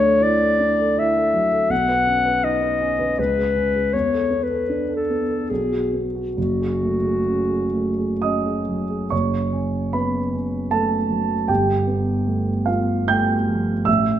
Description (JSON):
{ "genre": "classical, impressionist duo for clarinet and grand piano", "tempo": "59-83 BPM", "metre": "3/4", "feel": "rubato", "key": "unclear", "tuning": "A4 = 440 Hz", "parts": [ { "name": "mellow clarinet", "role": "melody", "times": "0.0-8.6 s", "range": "F#4 to F#5", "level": "-20 LUFS", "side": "left 2 dB", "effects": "none" }, { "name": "dark grand piano", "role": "accompaniment", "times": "0.0-14.2 s", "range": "F#1 to G6", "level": "-20 LUFS", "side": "right 2 dB", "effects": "none" } ], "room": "wet recital hall reverb, RT60 1.5 s", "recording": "none", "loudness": "-18 LUFS", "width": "side -11 dB against mid", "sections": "0.0-9.1 A section; 9.1-14.2 B section", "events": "none", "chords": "0.0 Dadd9; 1.7 Badd9; 3.2 C#5; 3.9 E7sus4; 5.5 B5; 6.4 F#madd9; 9.1 F#m; 11.5 G9" }